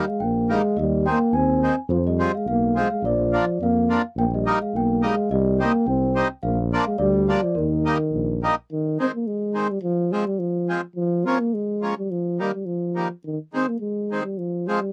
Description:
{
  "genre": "alpine folk, alpine dance band",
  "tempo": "106 BPM",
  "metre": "2/4",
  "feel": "swing 53% on 8ths",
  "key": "Eb major, Ab major from 8.7 s",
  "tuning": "A4 = 440 Hz",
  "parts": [
    { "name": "dark euphonium", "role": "melody", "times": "0.0-14.9 s", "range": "Eb3 to C4", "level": "-25 LUFS", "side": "equal", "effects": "none" },
    { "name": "large celesta", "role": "second line", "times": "0.0-8.4 s", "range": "Bb4 to Ab5", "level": "-30 LUFS", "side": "equal", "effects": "none" },
    { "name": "accordion", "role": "accompaniment", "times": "0.0-14.8 s", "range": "Eb3 to Eb4", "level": "-26 LUFS", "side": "equal", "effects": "none" },
    { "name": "mellow tuba", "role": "bass", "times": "0.2-8.5 s", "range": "Bb1 to F2", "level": "-27 LUFS", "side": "equal", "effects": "none" }
  ],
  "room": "moderate booth ambience, RT60 0.2 s",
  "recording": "dry, close 1970s-style studio recording",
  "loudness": "-23 LUFS",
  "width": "mono",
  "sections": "0.0-8.7 A section; 8.7-14.9 B section",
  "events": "none",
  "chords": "0.0 Eb; 0.8 Ab/Eb; 1.9 Fm; 3.0 Bb; 4.2 Eb/Bb; 5.3 Cm; 6.4 Bb; 7.6 Eb; 8.7 Ab; 9.8 Fm; 11.0 Bbm; 12.1 Eb; 13.2 Ab; 14.4 Fm",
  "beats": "0.20 | 0.77 1.34 | 1.90 2.47 | 3.03 3.60 | 4.17 4.74 | 5.31 5.87 | 6.43 6.99 | 7.56 8.12 | 8.70 9.26 | 9.83 10.39 | 10.96 11.52 | 12.09 12.66 | 13.23 13.81 | 14.38"
}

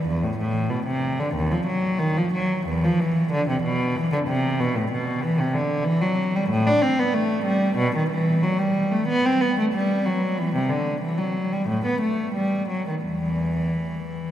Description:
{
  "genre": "classical, baroque-style suite movement for unaccompanied cello",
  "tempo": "93 BPM",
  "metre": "4/4",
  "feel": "rubato",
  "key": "E minor from 5.2 s",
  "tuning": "A4 = 441 Hz",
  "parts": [
    { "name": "rich cello", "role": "solo", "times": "0.0-14.3 s", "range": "D#2 to D4", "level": "-21 LUFS", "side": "equal", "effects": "none" }
  ],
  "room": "wet cathedral reverb, RT60 6.8 s",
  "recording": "none",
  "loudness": "-21 LUFS",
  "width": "side -11 dB against mid",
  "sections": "0.0-14.3 A section",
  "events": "none",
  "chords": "none",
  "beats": "| 0.07 0.71 1.35 1.99 | 2.66 3.31 3.95 4.59 | 5.23 5.86 6.50 7.14 | 7.78 8.43 9.08 9.73 | 10.38 11.03 11.69 12.36 | 13.06 13.78"
}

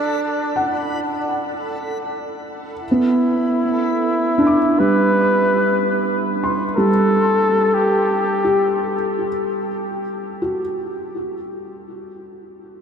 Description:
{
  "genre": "ambient",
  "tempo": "61 BPM",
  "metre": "4/4",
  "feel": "straight",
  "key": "C lydian",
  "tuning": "A4 = 443 Hz",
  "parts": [
    { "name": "mellow flugelhorn", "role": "melody", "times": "0.0-9.2 s", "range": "D4 to B4", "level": "-20 LUFS", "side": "left 1 dB", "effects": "diffuse ambient delay" },
    { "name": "felt-muted upright piano", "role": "arpeggios", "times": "0.0-12.8 s", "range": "G3 to D6", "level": "-20 LUFS", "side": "right 1 dB", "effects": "diffuse ambient delay" },
    { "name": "backwards swelling texture", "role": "texture", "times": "0.0-2.8 s", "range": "A4 to B5", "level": "-33 LUFS", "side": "right 3 dB", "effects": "built-in reverb" }
  ],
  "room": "wet huge ambient reverb, RT60 7.2 s",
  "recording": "none",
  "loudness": "-16 LUFS",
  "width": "side -7 dB against mid",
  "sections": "0.0-2.8 A section; 2.8-12.8 B section",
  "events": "none",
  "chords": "0.0 Bm7; 2.8 Cmaj7sus2",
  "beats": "0.86 1.85 | 2.83 3.81 4.80 5.78 | 6.77 7.75 8.73 9.72 | 10.70 11.68 12.67"
}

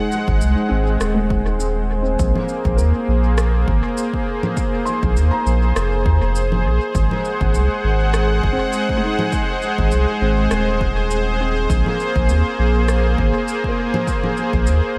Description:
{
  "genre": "ambient dub",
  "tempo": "101 BPM",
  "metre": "4/4",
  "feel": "swing 55% on 16ths",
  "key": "Ab mixolydian",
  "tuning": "A4 = 445 Hz",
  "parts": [
    { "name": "warm analog pad", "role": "sustained chords", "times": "0.0-15.0 s", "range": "Ab3 to Gb5", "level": "-23 LUFS", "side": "equal", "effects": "chorus, tremolo" },
    { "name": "felt-muted upright piano", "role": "arpeggios", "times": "0.0-15.0 s", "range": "Ab3 to C6", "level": "-30 LUFS", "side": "equal", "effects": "vintage 12-bit sampler grit, dub echo" },
    { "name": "electronic shaker, rim click and congas", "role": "drums", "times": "0.1-14.8 s", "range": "none", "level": "-30 LUFS", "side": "equal", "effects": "dub echo" },
    { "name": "soft dub sub bass", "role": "bass", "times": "0.3-14.8 s", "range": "Eb1 to Eb2", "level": "-20 LUFS", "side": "equal", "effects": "none" },
    { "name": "electronic kick drum", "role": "drums", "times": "0.3-14.6 s", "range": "none", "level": "-26 LUFS", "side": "equal", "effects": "overdrive" }
  ],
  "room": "light reverb, digital ambience",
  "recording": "none",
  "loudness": "-18 LUFS",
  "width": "mono",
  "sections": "0.0-15.0 A section",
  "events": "none",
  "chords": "0.0 Ab7; 2.2 Bbsus2; 6.9 Ab7; 11.7 Bb7sus2",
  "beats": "0.41 1.00 1.60 | 2.19 2.79 3.38 3.98 | 4.57 5.16 5.76 6.35 | 6.95 7.54 8.13 8.73 | 9.32 9.92 10.51 11.10 | 11.70 12.29 12.89 13.48 | 14.07 14.67"
}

